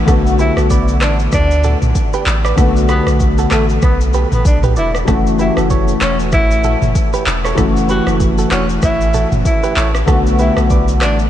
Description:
afrobeats; 96 BPM; 4/4; swing 58% on 16ths; B minor; A4 = 440 Hz
warm grand piano; accompaniment; 0.0-11.3 s; D3 to F#4; -17 LUFS; left 3 dB; analog chorus
punchy sub bass; bass; 0.0-11.3 s; E1 to D2; -16 LUFS; equal
direct-recorded clean electric guitar; riff; 0.1-10.9 s; D4 to D5; -23 LUFS; right 6 dB; spring reverb, analog delay
afro-pop drum kit; drums; 0.1-11.3 s; handclaps, kick drum, rim click, shaker, toms; -16 LUFS; equal; overdrive
breathy tenor saxophone; melody; 0.4-11.2 s; A3 to F#4; -20 LUFS; equal; analog delay
moderate huge ambient reverb, RT60 7.8 s; dreamy mix soaked in reverb; -11 LUFS; side -11 dB against mid
0.0-11.3 A section
0.1 Bm7; 5.1 F#m7

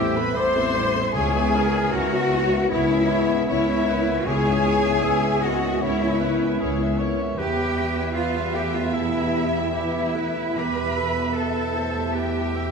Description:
cinematic; 77 BPM; 4/4; rubato; A4 = 442 Hz
warm studio violin section; melody; 0.0-12.7 s; C5 to E5; -33 LUFS; left 4 dB
clear clarinet; second line; 0.0-12.7 s; E4 to C5; -32 LUFS; left 2 dB
mellow hollow large flute ensemble; second line; 0.0-12.7 s; E5 to C6; -31 LUFS; left 5 dB
rich studio violin section; second line; 0.0-12.7 s; E5 to C6; -32 LUFS; left 2 dB
warm cor anglais; second line; 0.0-12.7 s; G4 to E5; -33 LUFS; right 2 dB
rich symphonic viola section; accompaniment; 0.0-12.7 s; E3 to E4; -33 LUFS; left 1 dB
warm concert grand piano; accompaniment; 0.0-12.7 s; C#2 to B4; -30 LUFS; equal
dark French horn section; sustained chords; 0.0-12.7 s; B2 to G4; -30 LUFS; left 4 dB
clear studio cello section; bass; 0.0-12.7 s; E4 to C5; -25 LUFS; right 1 dB
rich studio double bass section; bass; 0.0-12.7 s; A1 to E2; -27 LUFS; right 2 dB
wet scoring stage reverb, RT60 1.8 s; -20 LUFS; side -5 dB against mid
0.0-12.7 A section
0.0 Amadd9; 1.1 C#m7; 7.4 Em

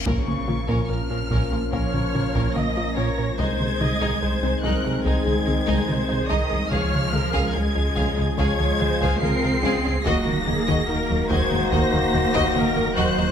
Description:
cinematic, hybrid orchestral and electronic film score; 72 BPM; 4/4; straight; A4 = 440 Hz
rich chamber violin section; second line; 0.0-13.3 s; Db4 to F5; -31 LUFS; left 2 dB
chorused pulse-width pad; sustained chords; 0.0-13.3 s; Db3 to Bb4; -32 LUFS; equal
pure sine sub bass; bass; 0.0-13.3 s; Eb1 to Db2; -30 LUFS; equal
reverse cymbal and impact; sound effects; 0.0-3.4 s; -35 LUFS; left 1 dB
warm symphonic violin section; melody; 0.1-13.3 s; Db6 to C7; -30 LUFS; left 2 dB
mellow French horn section; sustained chords; 0.1-13.3 s; Db3 to Ab4; -31 LUFS; left 5 dB
warm trombone section; sustained chords; 0.1-13.3 s; Eb3 to Bb3; -33 LUFS; right 3 dB
warbly dusty pluck; arpeggios; 0.1-13.3 s; Db3 to Bb4; -32 LUFS; left 2 dB; chorus, ping-pong delay
rubbery square bass; riff; 0.1-13.3 s; C2 to Bb3; -28 LUFS; right 2 dB
warm symphonic cello section; bass; 0.1-13.3 s; Db3 to C4; -30 LUFS; right 3 dB
warm symphonic double bass section; bass; 0.1-13.3 s; Bb1 to Eb2; -31 LUFS; right 3 dB
solo taiko drums; drums; 0.1-13.1 s; -29 LUFS; left 1 dB
warm symphonic viola section; accompaniment; 1.7-13.3 s; Gb4 to Eb5; -28 LUFS; equal
light reverb; -20 LUFS; side -8 dB against mid
0.1-13.3 A section
impact 0.1-3.4
0.1 Bbm; 3.4 Ab/C; 6.7 Db; 10.1 Ebm

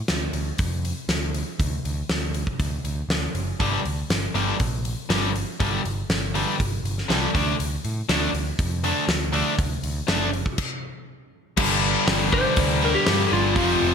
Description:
hard rock; 120 BPM; 4/4; straight; G minor; A4 = 439 Hz
overdriven picked electric bass; bass; 0.1-13.9 s; F1 to A2; -27 LUFS; right 1 dB
big rock drum kit; drums; 0.1-13.7 s; crash cymbal, hi-hat, kick drum, snare drum; -25 LUFS; equal
sludgy distorted guitar; riff; 3.6-13.9 s; F2 to D4; -28 LUFS; right 13 dB; overdrive
tight distorted guitar; riff; 3.6-13.9 s; F2 to D4; -26 LUFS; left 11 dB; distortion
scooped high-gain guitar; riff; 11.6-13.9 s; F2 to D4; -29 LUFS; right 2 dB; distortion
lightly driven lead guitar; melody; 12.3-13.9 s; F4 to C5; -23 LUFS; left 2 dB; analog chorus
light reverb; bright 1980s-style digital production; -21 LUFS; side -7 dB against mid
0.0-11.6 A section; 11.6-13.9 B section
stop 10.6-11.6; lead electric guitar solo 11.6-13.9
0.0 N.C.; 3.6 G5; 7.3 D5; 11.6 Gm

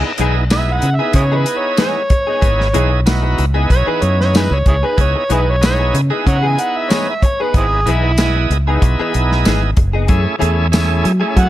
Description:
straight-eighth soul blues; 94 BPM; 4/4; swing 53% on 16ths; C# minor; A4 = 440 Hz
bright tonewheel organ; accompaniment; 0.0-11.5 s; A3 to D#5; -20 LUFS; right 3 dB; slow rotary speaker, overdrive
direct-recorded clean electric guitar; stabs; 0.0-11.4 s; E3 to G#4; -23 LUFS; left 5 dB; ensemble chorus
fingered electric bass; bass; 0.0-11.5 s; F#1 to F#3; -16 LUFS; equal
warm soul drum kit; drums; 0.2-11.5 s; hi-hat, kick drum, snare drum, tambourine; -16 LUFS; equal
overdriven harmonica; melody; 0.5-11.5 s; B#3 to G#5; -19 LUFS; right 1 dB
little or no reverb; -12 LUFS; side -14 dB against mid
0.0-11.5 A section
0.0 C#m9; 10.1 F#m9

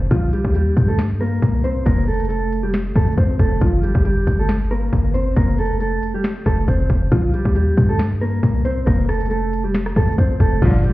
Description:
hip hop, trap; 137 BPM; 4/4; half-time; A4 = 440 Hz
long sustained 808-style bass; bass; 0.0-10.9 s; F1 to G2; -19 LUFS; equal
mellow electric guitar; melody; 0.1-10.9 s; F3 to C5; -22 LUFS; equal; digital delay
trap drum kit; drums; 0.1-10.9 s; crash cymbal, hi-hat, kick drum, rim click, snare drum; -18 LUFS; equal
warm symphonic string section; stabs; 10.6-10.9 s; Bb1 to D3; -17 LUFS; left 1 dB
little or no reverb; heard muffled through a wall, stone room reverb, EQ; -16 LUFS; side -17 dB against mid
0.0-10.6 A section
0.1 Cm7; 1.9 F; 3.6 Gm; 5.4 F; 7.1 Cm7; 8.9 F

